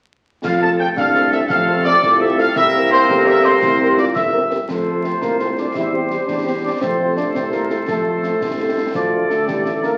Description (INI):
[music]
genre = military-style march for wind band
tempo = 113 BPM (dotted quarters)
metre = 6/8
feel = straight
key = F major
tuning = A4 = 440 Hz
[part]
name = dark trumpet section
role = melody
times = 0.4-9.9 s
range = F4 to A5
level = -23 LUFS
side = equal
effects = none
[part]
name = mellow wooden piccolo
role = second line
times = 0.4-4.6 s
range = C6 to A6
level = -24 LUFS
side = equal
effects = none
[part]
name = warm euphonium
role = second line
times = 0.4-10.0 s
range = F3 to G4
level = -24 LUFS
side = equal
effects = none
[part]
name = warm woodwind section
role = second line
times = 0.4-10.0 s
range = C4 to D5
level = -24 LUFS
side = equal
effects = none
[part]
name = warm trombone section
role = sustained chords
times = 0.4-10.0 s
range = C3 to Bb3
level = -29 LUFS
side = equal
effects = none
[part]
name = mellow tuba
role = bass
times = 0.4-9.9 s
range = G1 to F2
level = -26 LUFS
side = equal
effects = none
[part]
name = concert snare drum, clash cymbals and concert bass drum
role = drums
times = 0.4-10.0 s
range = none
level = -32 LUFS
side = equal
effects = none
[part]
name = mellow French horn section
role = accompaniment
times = 0.6-9.9 s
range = G3 to Bb4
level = -29 LUFS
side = equal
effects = none
[sound]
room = wet large studio reverb, RT60 0.9 s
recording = very old 78 rpm record, vinyl crackle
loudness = -17 LUFS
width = mono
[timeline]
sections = 0.4-4.7 A section; 4.7-10.0 B section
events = none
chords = 0.4 F; 2.6 C7; 4.7 F; 5.8 C/E; 6.8 F; 8.9 Dm